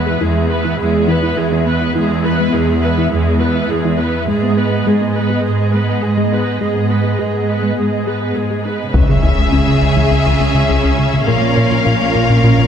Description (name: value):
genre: cinematic, hybrid orchestral and electronic film score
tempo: 103 BPM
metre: 4/4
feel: straight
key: C# minor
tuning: A4 = 440 Hz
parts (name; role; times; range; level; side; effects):
- rich symphonic viola section; accompaniment; 0.0-12.7 s; G#3 to B4; -20 LUFS; equal; none
- hollow soft pad; sustained chords; 0.0-12.7 s; G#3 to E5; -20 LUFS; equal; ensemble chorus
- warm studio cello section; bass; 0.0-12.7 s; E2 to C#3; -18 LUFS; right 3 dB; none
- tight sequenced synth; arpeggios; 0.1-12.7 s; C#3 to G#4; -23 LUFS; left 2 dB; chorus, phaser, tape echo
- warm studio violin section; melody; 8.9-12.7 s; E5 to E#5; -20 LUFS; left 6 dB; none
- rich symphonic violin section; second line; 8.9-12.7 s; G#4 to A#4; -22 LUFS; left 2 dB; none
- rubbery square bass; riff; 8.9-12.7 s; C#2 to A#3; -16 LUFS; left 2 dB; none
- warm studio double bass section; bass; 8.9-12.7 s; A#1 to C#2; -20 LUFS; right 3 dB; none
- taiko ensemble; drums; 8.9-10.1 s; none; -19 LUFS; left 1 dB; none
- impact; sound effects; 8.9-11.3 s; none; -20 LUFS; left 1 dB; none
room: moderate scoring stage reverb, RT60 1.9 s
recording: none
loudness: -12 LUFS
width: side -8 dB against mid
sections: 0.0-8.9 A section; 8.9-12.7 B section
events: impact 8.9-11.3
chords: 0.0 E; 4.3 G#m; 8.9 C#m; 11.3 A#m